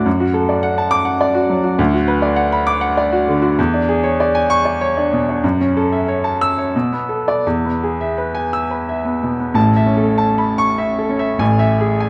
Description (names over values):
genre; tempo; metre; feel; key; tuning
classical, romantic character piece for solo piano; 80-108 BPM; 3/4; rubato; A major; A4 = 438 Hz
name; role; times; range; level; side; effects
clear baby grand piano; solo; 0.0-12.1 s; A1 to E6; -17 LUFS; equal; none
room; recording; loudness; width
moderate recital hall reverb, RT60 1.9 s; close, detailed microphones; -17 LUFS; mono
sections
0.0-9.6 A section; 9.6-12.1 B section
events
none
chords
0.1 D/F#; 1.8 Bm/D; 3.6 E6; 5.4 F#m7; 6.7 Bm7; 7.4 E; 9.6 A; 11.4 E/A